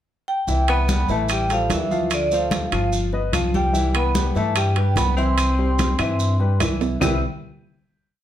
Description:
Afro-Cuban jazz; 147 BPM; 4/4; straight; C major; A4 = 440 Hz
vibraphone with medium hard mallets; melody; 0.3-7.2 s; D5 to E6; -25 LUFS; right 2 dB
warm concert grand piano; accompaniment; 0.5-7.2 s; C3 to F5; -26 LUFS; left 3 dB
upright bass; bass; 0.5-7.2 s; G1 to G2; -22 LUFS; equal
congas; percussion; 0.5-7.1 s; -28 LUFS; equal
maracas; percussion; 0.5-7.1 s; -34 LUFS; right 4 dB
breathy tenor saxophone; second line; 0.7-7.2 s; D3 to E4; -27 LUFS; left 3 dB
claves; percussion; 0.7-7.1 s; -33 LUFS; left 3 dB
timbales; percussion; 0.7-7.1 s; -27 LUFS; right 6 dB
moderate studio reverb, RT60 0.7 s; -18 LUFS; side -11 dB against mid
0.0-0.5 pickup bar; 0.5-7.0 A section; 7.0-8.2 final chord
drum fill 6.8
0.5 Cmaj7; 1.3 A5; 2.1 Dm7; 2.9 Gaug7; 3.7 Cmaj7
0.07 | 0.48 0.89 1.29 1.70 | 2.11 2.52 2.93 3.34 | 3.75 4.16 4.56 4.97 | 5.38 5.79 6.20 6.61 | 7.02

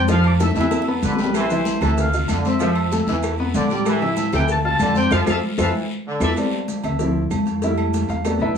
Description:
latin, salsa; 191 BPM; 4/4; straight; A4 = 438 Hz
bright baby grand piano; accompaniment; 0.0-8.6 s; E3 to F6; -22 LUFS; left 1 dB
upright bass; bass; 0.0-8.6 s; A1 to F2; -24 LUFS; equal
warm trumpet section; melody; 0.1-6.3 s; G4 to E6; -25 LUFS; equal
bright trombone section; second line; 0.1-6.2 s; D3 to F3; -26 LUFS; right 2 dB
agogo bells and timbales; percussion; 0.1-8.6 s; -31 LUFS; right 9 dB
congas; percussion; 0.1-8.6 s; -26 LUFS; left 2 dB
cowbell and bongos; percussion; 0.1-8.4 s; -29 LUFS; left 6 dB
guiro; percussion; 0.1-6.3 s; -37 LUFS; left 6 dB
maracas; percussion; 0.1-8.4 s; -40 LUFS; right 7 dB
claves; percussion; 1.3-8.4 s; -39 LUFS; right 6 dB
moderate studio reverb, RT60 0.8 s; small room ambience; -18 LUFS; side -7 dB against mid
0.0-6.4 A section; 6.4-8.6 B section
drum fill 0.1-1.3, 5.6-6.4; band accent 5.1-6.4; grand piano solo 6.4-8.6
0.1 Fmaj7; 0.7 E7sus4; 1.3 Am7; 2.0 Dm7; 2.6 Fmaj7; 3.2 E7sus4; 3.9 A5; 4.5 Dm7; 5.1 Fmaj7; 5.7 E7sus4; 6.4 D13sus4; 7.0 Dm7; 7.6 Fmaj7
| 0.09 0.40 0.72 1.03 | 1.35 1.66 1.98 2.29 | 2.60 2.92 3.23 3.54 | 3.86 4.17 4.49 4.80 | 5.11 5.43 5.74 6.05 | 6.37 6.68 7.00 7.31 | 7.62 7.94 8.25 8.56

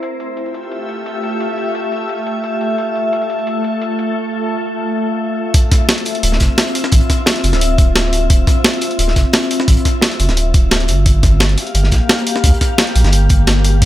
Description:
liquid drum and bass; 174 BPM; 4/4; straight; D minor; A4 = 441 Hz
glassy FM pad; sustained chords; 0.0-13.9 s; A3 to G5; -19 LUFS; left 2 dB; ensemble chorus, built-in reverb, sidechain pumping
breakbeat sampler-style drum kit; drums; 0.0-13.9 s; hi-hat, snare drum; -17 LUFS; equal; low-pass filter on hats, low-pass filter on snare, low-pass filter on room
electronic kick drum; drums; 5.5-13.9 s; -12 LUFS; equal
warm soul drum kit; drums; 5.5-13.9 s; hi-hat, snare drum; -23 LUFS; equal; high-pass filter on hats, high-pass filter on snare, high-pass filter on room
warm sub bass; bass; 6.2-13.9 s; D1 to D2; -14 LUFS; equal
light reverb, digital ambience; -12 LUFS; side -14 dB against mid
0.0-5.5 A section; 5.5-13.9 B section
drop 5.5-13.9
0.0 Fmaj9; 5.5 Dm9; 11.1 Gm7
| 0.03 0.37 0.71 1.06 | 1.40 1.75 2.09 2.44 | 2.78 3.13 3.47 3.82 | 4.16 4.51 4.85 5.20 | 5.54 5.89 6.23 6.58 | 6.92 7.27 7.61 7.96 | 8.30 8.65 8.99 9.34 | 9.68 10.03 10.37 10.71 | 11.06 11.40 11.75 12.09 | 12.44 12.78 13.13 13.47 | 13.82

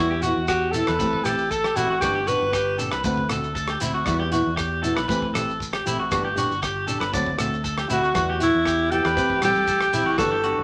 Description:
highlife guitar band; 117 BPM; 4/4; straight; A4 = 440 Hz
clear alto saxophone; melody; 0.0-2.8, 7.9-10.6 s; E4 to B4; -24 LUFS; equal
flamenco guitar; accompaniment; 0.0-10.6 s; E3 to G4; -30 LUFS; equal
electric guitar at the edge of break-up; arpeggios; 0.0-10.6 s; E4 to D5; -28 LUFS; equal; spring reverb
fingered electric bass; bass; 0.0-10.6 s; G1 to E2; -33 LUFS; equal
damped 70s drum kit; drums; 0.2-10.6 s; hi-hat, kick drum, rim click; -33 LUFS; equal
shekere; percussion; 0.2-10.3 s; -35 LUFS; equal
congas; percussion; 8.2-10.3 s; -37 LUFS; equal
moderate studio reverb, RT60 0.6 s; -23 LUFS; mono
0.0-10.6 A section
0.0 Emadd9; 1.0 Am7; 2.0 G6; 3.0 D7; 4.1 Emadd9; 5.1 Am7; 6.1 G6; 7.1 D7; 8.2 Emadd9; 9.2 Am7
0.48 1.00 1.51 | 2.02 2.53 3.05 3.56 | 4.07 4.58 5.09 5.61 | 6.12 6.63 7.14 7.65 | 8.16 8.67 9.18 9.69 | 10.20

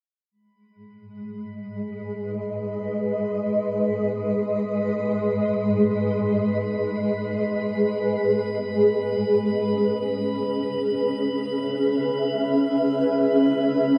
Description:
ambient; free time; G# minor; A4 = 440 Hz
granular cloud pad; sustained chords; 1.2-14.0 s; G#3 to E5; -24 LUFS; equal; built-in reverb, ensemble chorus
drifting glass-harmonics texture; texture; 1.2-14.0 s; B5; -41 LUFS; equal; chorus, built-in reverb
wet lush hall reverb, RT60 2.5 s; dreamy mix soaked in reverb; -24 LUFS; mono
0.3-14.0 A section
fade-in on synth texture 0.3-14.0
0.3 G#m; 9.4 C#m7
free time

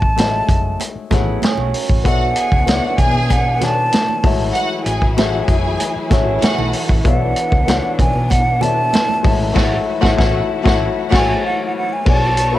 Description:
lush 1970s-style soul; 96 BPM; 4/4; straight; B dorian; A4 = 435 Hz
breathy concert flute; melody; 0.0-12.6 s; F#5 to B5; -19 LUFS; right 1 dB; cassette tape
warm grand piano; accompaniment; 0.0-12.6 s; G#3 to G#5; -22 LUFS; left 8 dB; cassette tape
hollow-body short-scale fingered electric bass; bass; 0.0-12.6 s; F#1 to B2; -21 LUFS; equal
vintage drum kit; drums; 0.0-12.5 s; crash cymbal, hi-hat, kick drum, snare drum; -17 LUFS; equal; cassette tape
congas; percussion; 0.2-9.2 s; -27 LUFS; right 10 dB
electric guitar through a small old amp; riff; 1.1-2.0, 6.1-11.3 s; B3 to A4; -25 LUFS; right 8 dB; spring reverb, cassette tape
warm symphonic violin section; second line; 2.1-12.6 s; F#4 to C#6; -23 LUFS; equal; cassette tape, analog delay
warm symphonic string section; sustained chords; 2.1-12.6 s; E3 to E4; -26 LUFS; left 1 dB; cassette tape
light reverb; home recording on cassette; -14 LUFS; side -14 dB against mid
0.0-12.1 A section
flute solo 0.0-12.1; band accent 9.6-12.1
0.0 F#m7; 2.1 Bm11; 4.2 F#m7; 7.1 Bm11; 9.2 F#m7/A; 12.1 Bm7
0.18 0.80 1.43 | 2.05 2.68 3.30 3.93 | 4.55 5.18 5.80 6.43 | 7.05 7.68 8.31 8.93 | 9.56 10.19 10.81 11.44 | 12.07

